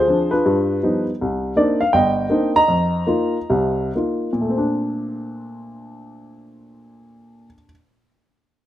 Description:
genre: solo jazz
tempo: 114-169 BPM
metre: 4/4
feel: swing 64% on 8ths, rubato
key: Bb major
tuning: A4 = 440 Hz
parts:
  - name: dark baby grand piano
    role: solo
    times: 0.0-7.7 s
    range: G1 to Bb5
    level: -17 LUFS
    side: equal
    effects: none
room: studio reverb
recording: rough home demo mix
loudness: -17 LUFS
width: side -12 dB against mid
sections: 0.0-1.2 A section; 1.2-4.5 B section; 4.5-8.5 C section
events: slowing down 1.2-4.5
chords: 0.5 G7b13; 1.2 Cm9; 2.7 F7sus4; 4.5 Bbmaj9

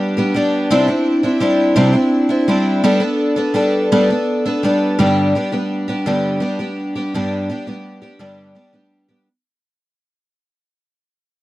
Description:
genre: rock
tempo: 56 BPM (dotted quarters)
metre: 6/8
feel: straight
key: G major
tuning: A4 = 437 Hz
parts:
  - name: picked twelve-string acoustic guitar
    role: solo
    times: 0.0-9.3 s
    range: G2 to A4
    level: -14 LUFS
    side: equal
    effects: none
room: light reverb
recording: dry, close 1970s-style studio recording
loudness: -14 LUFS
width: side -16 dB against mid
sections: 0.0-5.0 A section; 5.0-9.3 B section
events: fade-out 5.0-9.3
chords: 0.0 G; 0.7 Cadd9; 2.8 Gadd9; 5.0 G

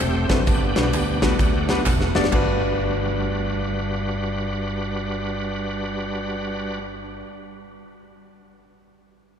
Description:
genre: uptempo gospel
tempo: 129 BPM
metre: 4/4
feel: swing 62% on 8ths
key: G major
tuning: A4 = 440 Hz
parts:
  - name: bright tonewheel organ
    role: sustained chords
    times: 0.0-6.8 s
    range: G3 to B4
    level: -26 LUFS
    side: right 1 dB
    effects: slow rotary speaker, overdrive, chorus vibrato
  - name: fingered electric bass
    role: bass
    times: 0.0-7.2 s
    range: E1 to D2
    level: -28 LUFS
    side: equal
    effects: none
  - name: modern studio drum kit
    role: drums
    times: 0.0-2.5 s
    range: crash cymbal, kick drum, ride cymbal, snare drum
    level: -23 LUFS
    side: equal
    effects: none
  - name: handclaps and tambourine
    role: percussion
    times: 0.0-2.6 s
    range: none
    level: -35 LUFS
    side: right 2 dB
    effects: none
  - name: clear grand piano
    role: accompaniment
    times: 0.3-7.2 s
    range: G2 to D5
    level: -27 LUFS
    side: left 2 dB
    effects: none
room: wet cathedral reverb, RT60 5.0 s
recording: recorded in a church or concert hall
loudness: -20 LUFS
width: side -8 dB against mid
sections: 0.0-2.3 A section; 2.3-6.0 B section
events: tonewheel organ solo 0.0-2.3; drum fill 1.9-2.3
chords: 0.5 Gmaj7

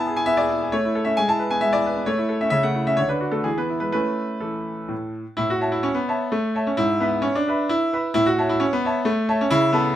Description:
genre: classical-period piano sonatina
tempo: 122-137 BPM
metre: 3/4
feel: rubato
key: A major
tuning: A4 = 440 Hz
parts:
  - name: bright grand piano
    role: solo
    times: 0.0-10.0 s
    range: G#2 to B5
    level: -20 LUFS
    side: equal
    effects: none
room: light reverb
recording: none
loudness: -20 LUFS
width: side -12 dB against mid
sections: 0.0-5.4 A section; 5.4-10.0 B section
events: none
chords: 0.0 E/B; 0.7 A; 1.2 E/G#; 2.1 A; 2.5 A/C#; 3.0 D; 3.5 E; 3.9 A; 6.8 E/G#; 8.2 A

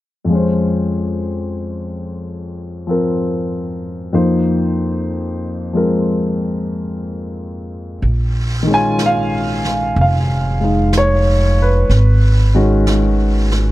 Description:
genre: jazz ballad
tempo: 62 BPM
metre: 4/4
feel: swing 68% on 8ths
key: Bb minor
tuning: A4 = 440 Hz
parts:
  - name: warm grand piano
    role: accompaniment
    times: 0.2-13.7 s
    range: F2 to Ab5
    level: -17 LUFS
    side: left 1 dB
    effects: none
  - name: upright bass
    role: bass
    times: 8.0-13.7 s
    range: F1 to Bb1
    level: -14 LUFS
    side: right 1 dB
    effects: none
  - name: jazz brush drum kit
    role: drums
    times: 8.0-13.7 s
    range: brushed snare drum, hi-hat, snare drum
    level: -27 LUFS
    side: right 1 dB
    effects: none
room: light reverb, studio reverb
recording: dark, warm production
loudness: -14 LUFS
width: side -16 dB against mid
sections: 0.3-8.0 A section; 8.0-13.7 B section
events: none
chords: 0.3 Bbm7/F; 4.2 F7sus4; 8.0 Bbm7; 11.9 Abm7

